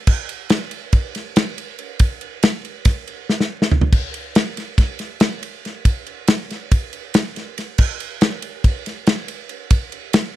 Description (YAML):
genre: rock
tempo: 280 BPM (eighths)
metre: 9/8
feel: straight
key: none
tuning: none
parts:
  - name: loose indie drum kit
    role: drums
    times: 0.1-10.2 s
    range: crash cymbal, kick drum, ride cymbal, snare drum, toms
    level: -18 LUFS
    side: equal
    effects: none
room: light reverb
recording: dry, close 1970s-style studio recording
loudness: -18 LUFS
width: side -15 dB against mid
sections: 0.0-10.4 A section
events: drum fill 3.3-3.9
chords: none